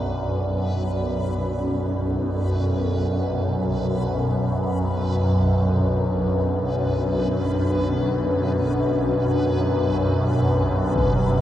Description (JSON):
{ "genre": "dark ambient drone", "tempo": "free time", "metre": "none", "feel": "none", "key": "unclear", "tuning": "A4 = 442 Hz", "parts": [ { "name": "dark analog pad", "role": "sustained chords", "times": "0.0-11.4 s", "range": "B2 to D5", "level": "-25 LUFS", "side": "left 1 dB", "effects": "chorus" }, { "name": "swarming drone", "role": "drone", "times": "0.0-11.4 s", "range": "B1 to F#2", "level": "-21 LUFS", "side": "equal", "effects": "built-in reverb, phaser" }, { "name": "backwards swelling texture", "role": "texture", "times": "0.0-11.4 s", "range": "B4", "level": "-37 LUFS", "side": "equal", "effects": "built-in reverb" }, { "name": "impact", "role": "percussion", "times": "11.0-11.2 s", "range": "none", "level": "-24 LUFS", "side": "equal", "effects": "low-pass filter on sfx" } ], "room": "wet huge ambient reverb, RT60 8.0 s", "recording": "worn, warbling old tape, cassette tape, warbly pitch drift", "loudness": "-20 LUFS", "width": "side -12 dB against mid", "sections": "0.0-11.4 A section", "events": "fade-in on synth texture 0.0-11.4", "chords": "0.0 Bm; 4.6 G/B" }